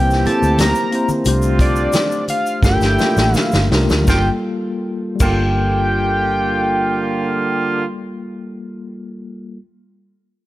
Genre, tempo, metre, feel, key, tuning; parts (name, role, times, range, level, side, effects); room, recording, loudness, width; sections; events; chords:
lush 1970s-style soul; 80-93 BPM; 4/4; straight; G dorian; A4 = 440 Hz
fat analog lead; melody; 0.0-7.8 s; D5 to Bb5; -20 LUFS; equal; chorus
mellow tine electric piano; accompaniment; 0.0-9.6 s; G3 to C5; -22 LUFS; left 2 dB; medium stereo tremolo
warm horn section; stabs; 0.0-7.8 s; Bb2 to G4; -23 LUFS; right 3 dB
vintage muted fingered electric bass; bass; 0.0-8.5 s; G1 to D2; -19 LUFS; equal
vintage drum kit; drums; 0.1-5.4 s; crash cymbal, hi-hat, kick drum, snare drum; -19 LUFS; equal
tube shaker; percussion; 0.1-5.4 s; -35 LUFS; left 5 dB
congas; percussion; 0.3-5.4 s; -27 LUFS; right 2 dB
small room ambience; -14 LUFS; side -16 dB against mid
0.0-4.1 A section; 4.1-7.1 B section
slowing down 0.0-4.1; drum fill 2.6-4.1
0.0 C7; 1.3 F69/C; 2.6 Gm9